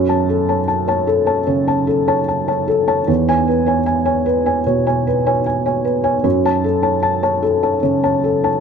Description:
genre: neoclassical minimalist piano.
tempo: 75 BPM.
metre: 4/4.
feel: rubato.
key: F# minor.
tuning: A4 = 439 Hz.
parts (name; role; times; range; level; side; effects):
felt-muted upright piano; solo; 0.0-8.6 s; E2 to A5; -14 LUFS; equal; none.
room: light reverb.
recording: close, detailed microphones.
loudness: -14 LUFS.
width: side -6 dB against mid.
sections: 0.0-8.6 A section.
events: none.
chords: 0.0 F#m; 3.1 E6; 6.2 F#m.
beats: 0.68 1.47 2.29 | 3.09 3.88 4.67 5.47 | 6.25 7.03 7.84.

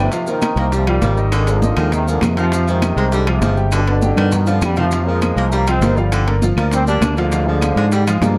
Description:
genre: latin, salsa.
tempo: 200 BPM.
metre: 4/4.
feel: straight.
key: unclear.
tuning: A4 = 439 Hz.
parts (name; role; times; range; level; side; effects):
bright trombone section; melody; 0.0-8.4 s; F2 to D4; -23 LUFS; equal; none.
clear concert grand piano; accompaniment; 0.0-8.4 s; Eb3 to G5; -25 LUFS; equal; none.
fingered electric bass; bass; 0.0-8.4 s; G1 to Ab2; -19 LUFS; equal; none.
bongos; percussion; 0.1-8.4 s; none; -30 LUFS; equal; none.
congas; percussion; 0.1-8.4 s; none; -28 LUFS; equal; none.
maracas; percussion; 0.1-8.4 s; none; -37 LUFS; equal; none.
timbales; percussion; 0.1-8.4 s; none; -30 LUFS; equal; none.
warm baritone saxophone; second line; 0.3-8.4 s; D3 to Bb3; -27 LUFS; equal; none.
claves; percussion; 0.4-8.2 s; none; -37 LUFS; equal; none.
room: moderate studio reverb, RT60 0.8 s.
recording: dark, warm production.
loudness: -16 LUFS.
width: mono.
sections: 0.1-8.4 A section.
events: drum fill 4.5-4.9.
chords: 0.1 Fsus4; 1.3 Abadd9; 2.5 Fm; 3.7 G; 4.9 Fsus4; 6.1 Gm7; 7.3 Ddim.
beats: | 0.12 0.42 0.72 1.02 | 1.32 1.62 1.92 2.22 | 2.52 2.82 3.12 3.42 | 3.72 4.02 4.32 4.62 | 4.92 5.22 5.52 5.82 | 6.12 6.42 6.72 7.02 | 7.32 7.62 7.92 8.22.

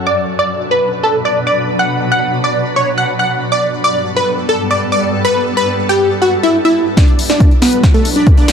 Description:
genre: uplifting trance.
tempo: 139 BPM.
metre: 4/4.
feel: straight.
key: B minor.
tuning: A4 = 440 Hz.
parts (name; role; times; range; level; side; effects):
shimmering ambient pad; sustained chords; 0.0-8.5 s; G2 to B4; -19 LUFS; equal; chorus, built-in reverb, sidechain pumping.
supersaw stab; melody; 0.1-8.5 s; A3 to F#5; -14 LUFS; equal; sidechain pumping, low-pass filter, digital delay.
wide unison pluck; second line; 0.1-6.9 s; E5 to F#6; -20 LUFS; equal; sidechain pumping, ping-pong delay.
electronic kick drum; drums; 7.0-8.4 s; none; -9 LUFS; equal; none.
punchy analog drum machine; drums; 7.0-8.5 s; hi-hat, snare drum; -19 LUFS; left 1 dB; high-pass filter on snare, low-pass filter on snare, high-pass filter on hats, low-pass filter on hats.
riser; sound effects; 7.3-8.5 s; none; -29 LUFS; left 2 dB; none.
room: light reverb.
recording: none.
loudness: -11 LUFS.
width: side -7 dB against mid.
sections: 0.0-7.0 A section; 7.0-8.5 B section.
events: build-up 7.0-8.5; drum fill 7.0-8.5.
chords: 0.1 Bm; 3.5 Gadd9; 7.0 Bm.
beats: | 0.07 0.50 0.93 1.36 | 1.79 2.22 2.66 3.09 | 3.52 3.95 4.38 4.81 | 5.25 5.68 6.11 6.54 | 6.97 7.40 7.84 8.27.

